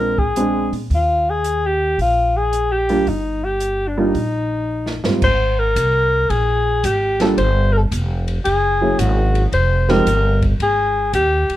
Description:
jazz, small-group swing and bop; 112 BPM; 4/4; swing 67% on 8ths; Eb major, Ab major from 5.2 s; A4 = 435 Hz
breathy alto saxophone; melody; 0.0-11.6 s; D4 to C5; -18 LUFS; left 2 dB
warm baby grand piano; accompaniment; 0.0-10.1 s; Ab2 to A4; -19 LUFS; right 2 dB
upright bass; bass; 0.0-11.5 s; F1 to Bb2; -20 LUFS; equal
open jazz drum kit; drums; 0.2-11.6 s; crash cymbal, hi-hat, kick drum, ride cymbal, snare drum; -26 LUFS; right 1 dB
light reverb; dark, warm production; -15 LUFS; side -14 dB against mid
0.0-5.2 A section; 5.2-11.6 B section
drum fill 4.7-5.2
0.0 Bb7; 0.9 Eb; 5.2 Abmaj9; 7.4 G7(no3); 8.5 Gb9; 9.5 Fm9

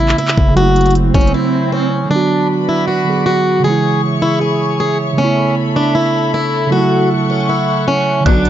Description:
hip hop, trap; 156 BPM; 4/4; half-time; A4 = 440 Hz
picked plugged-in swing-style acoustic guitar; melody; 0.0-8.5 s; C#4 to G#4; -16 LUFS; left 1 dB; low-pass filter, tape echo
tine electric piano; accompaniment; 0.0-8.5 s; C#3 to G#4; -16 LUFS; right 3 dB; overdrive, low-pass filter
distorted 808-style bass; bass; 0.0-1.3, 8.3-8.5 s; F#1 to B1; -16 LUFS; left 1 dB; distortion
trap drum kit; drums; 0.1-1.3, 8.3-8.5 s; handclaps, hi-hat, kick drum; -15 LUFS; left 1 dB
swell; sound effects; 0.9-2.1 s; -21 LUFS; right 4 dB
warm symphonic string section; sustained chords; 2.1-8.5 s; F#4 to D6; -20 LUFS; left 2 dB
delicate synth tine bell; second line; 8.3-8.5 s; F#6; -20 LUFS; right 8 dB; chorus
rich chamber string section; stabs; 8.3-8.4 s; D2 to F#3; -19 LUFS; left 7 dB
little or no reverb; nothing above 7.7 kHz; -12 LUFS; side -11 dB against mid
0.0-2.1 A section; 2.1-8.5 B section
swell 0.9-2.1; break 1.3-2.1
0.0 Aadd9; 0.6 F#m7; 2.1 Bm; 3.6 C#m; 5.2 Aadd9; 6.7 F#m7

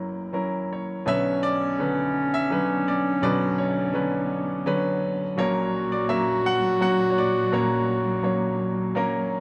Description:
folk; 83 BPM; 3/4; straight; B harmonic minor; A4 = 441 Hz
clear baby grand piano; melody; 0.0-9.4 s; F#1 to F#5; -27 LUFS; equal
clear clarinet; second line; 1.1-9.3 s; C#4 to F#4; -28 LUFS; equal
dark studio string section; sustained chords; 1.1-9.4 s; A#2 to B3; -35 LUFS; equal
light reverb; close, detailed microphones; -24 LUFS; mono
0.0-1.1 A section; 1.1-9.4 B section
0.0 F#7; 1.1 Bmadd9; 5.4 F#/A#

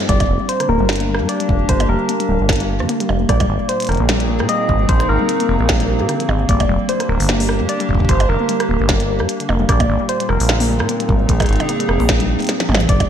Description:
IDM; 150 BPM; 4/4; swing 56% on 16ths; G phrygian; A4 = 436 Hz
warbly tape-like pad; sustained chords; 0.0-13.1 s; Bb2 to Ab4; -23 LUFS; right 1 dB; chorus, built-in reverb, vintage 12-bit sampler grit
warbly dusty pluck; arpeggios; 0.0-13.0 s; G2 to G4; -22 LUFS; left 3 dB; chorus, ping-pong delay
glitchy drum kit; drums; 0.0-13.1 s; hi-hat, percussion blips, rim click, snare drum, toms; -22 LUFS; right 1 dB
soft struck synth lead; melody; 0.1-13.1 s; Bb4 to Eb5; -22 LUFS; equal; chorus, phaser, digital delay
deep acid bass; bass; 0.1-13.1 s; D1 to Bb2; -18 LUFS; equal
electronic kick drum; drums; 0.1-13.1 s; -19 LUFS; equal
moderate lush hall reverb, RT60 1.7 s, digital ambience; bright 1980s-style digital production; -14 LUFS; side -9 dB against mid
0.1-13.1 A section
drum fill 12.5-12.9
0.1 Gm; 3.3 Bb7sus4; 6.5 Gm; 9.7 Bb7sus4

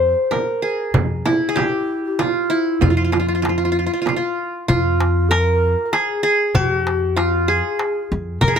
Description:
Arabic maqam ensemble; 96 BPM; 3/4; straight; F maqam nahawand; A4 = 439 Hz
qanun; melody; 0.0-8.6 s; E4 to C5; -20 LUFS; left 1 dB
breathy mellow low ney; second line; 0.0-8.6 s; E4 to C5; -22 LUFS; right 1 dB
upright bass; bass; 0.0-8.6 s; F2; -20 LUFS; left 1 dB
darbuka; percussion; 0.3-8.6 s; -22 LUFS; left 1 dB
frame drum; percussion; 0.3-4.2 s; -24 LUFS; right 7 dB
little or no reverb; -16 LUFS; side -7 dB against mid
0.0-4.7 A section; 4.7-8.6 B section

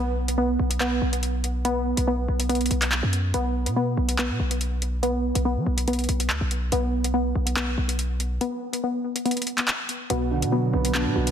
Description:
hip hop, drill; 142 BPM; 4/4; half-time; B minor; A4 = 438 Hz
glassy wavetable pluck; arpeggios; 0.0-11.3 s; B3; -26 LUFS; equal; chorus, low-pass filter, tape echo
hard-hitting 808-style bass; bass; 0.0-11.3 s; B1 to F#3; -25 LUFS; equal
drill drum kit; drums; 0.3-11.3 s; handclaps, hi-hat; -27 LUFS; equal
felt-muted upright piano; accompaniment; 10.1-11.3 s; B2 to D4; -25 LUFS; right 5 dB; low-pass filter
light reverb, digital ambience; dense, heavily limited modern master; -22 LUFS; side -8 dB against mid
0.0-11.3 A section
kick muted 8.4-10.1
0.0 B5; 3.3 N.C.; 10.1 Bm

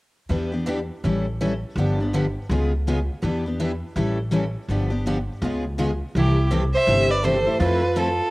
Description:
acoustic string swing (jazz manouche); 164 BPM; 4/4; swing 61% on 8ths; C major; A4 = 444 Hz
picked steel-string acoustic guitar; accompaniment; 0.3-8.1 s; C3 to A4; -25 LUFS; left 2 dB; cassette tape
picked swing-style acoustic guitar; accompaniment; 0.3-8.1 s; C3 to B4; -33 LUFS; right 2 dB; cassette tape
upright bass; bass; 0.3-8.2 s; G1 to F2; -24 LUFS; equal
rich violin; melody; 6.2-8.3 s; G4 to E5; -23 LUFS; right 1 dB
clear soprano saxophone; second line; 6.2-8.3 s; E4 to C5; -23 LUFS; right 1 dB; cassette tape
moderate spring reverb, RT60 2.6 s; home recording on cassette; -20 LUFS; side -21 dB against mid
0.3-6.1 A section; 6.1-8.3 B section
0.3 Em7; 1.0 A7; 1.8 G7; 2.5 Db7; 3.2 Em7; 4.0 A7; 4.7 G7; 5.4 Db7; 6.1 C6; 7.6 Fmaj7

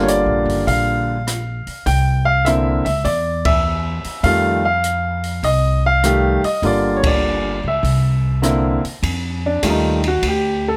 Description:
jazz piano trio; 100 BPM; 4/4; swing 68% on 8ths; A4 = 439 Hz
clear baby grand piano; melody; 0.0-10.8 s; D3 to G5; -20 LUFS; equal
upright bass; bass; 0.0-10.8 s; Gb1 to F2; -22 LUFS; equal
open jazz drum kit; drums; 0.1-10.4 s; hi-hat, kick drum, ride cymbal, rim click; -27 LUFS; equal
light reverb; -18 LUFS; mono
0.0-9.0 A section; 9.0-10.8 B section
band accent 3.4, 6.9; grand piano solo 9.0-10.8
0.0 Gm7; 1.9 Cadd9; 4.2 F9; 6.6 Gm7; 7.8 C9; 9.0 F9

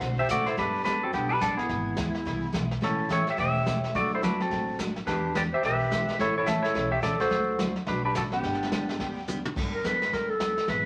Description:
country, western swing; 214 BPM; 4/4; swing 61% on 8ths; G major; A4 = 440 Hz
clean lap steel guitar; melody; 0.0-9.2 s; B3 to E5; -30 LUFS; equal
picked steel-string acoustic guitar; accompaniment; 0.0-10.9 s; C#3 to A4; -36 LUFS; equal
upright bass; bass; 0.0-10.9 s; E1 to E2; -38 LUFS; equal
vintage brush drum kit; drums; 0.0-10.9 s; brushed snare drum, crash cymbal, hi-hat, kick drum, snare drum, toms; -36 LUFS; equal
breathy clarinet; second line; 0.2-10.9 s; D4 to C#5; -34 LUFS; equal
wet club reverb, RT60 0.9 s; vinyl crackle; -27 LUFS; mono
0.6-9.6 A section; 9.6-10.9 B section
drum fill 9.3; clarinet solo 9.6-10.9
0.0 D7; 0.6 Gadd9; 1.7 E/G#; 2.8 A7; 3.9 D; 5.1 Em7; 6.2 A; 7.3 D; 8.4 G; 9.6 Gadd9

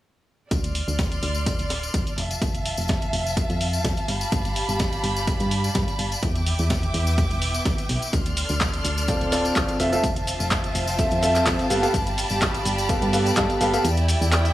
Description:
piano house; 126 BPM; 4/4; swing 54% on 16ths; D dorian; A4 = 440 Hz
rich studio violin section; sustained chords; 0.5-14.5 s; G4 to F6; -29 LUFS; equal; sidechain pumping
solid FM bass; bass; 0.5-14.5 s; D1 to G2; -26 LUFS; equal; sidechain pumping
breakbeat sampler-style drum kit; drums; 0.5-14.4 s; hi-hat, snare drum; -35 LUFS; equal
electronic kick drum; drums; 0.5-13.5 s; -27 LUFS; equal
punchy analog drum machine; drums; 0.5-14.5 s; handclaps, hi-hat, shaker; -29 LUFS; equal
tambourine; percussion; 0.5-14.5 s; -34 LUFS; left 3 dB
clear studio string section; texture; 0.5-14.5 s; B3 to B5; -34 LUFS; right 1 dB; sidechain pumping
clear grand piano; riff; 9.1-13.8 s; B3 to F5; -24 LUFS; equal; sidechain pumping, analog delay
small room ambience; dry, gritty hardware recording, small room reverb; -20 LUFS; side -14 dB against mid
0.5-14.5 A section
fade-in on string section 0.5-14.5; kick drops out 13.8-14.5
0.5 Dm7; 2.2 Fmaj7; 4.1 G9; 6.2 Em7; 8.1 Dm7; 9.8 Fmaj7; 11.7 G9; 13.8 Em7

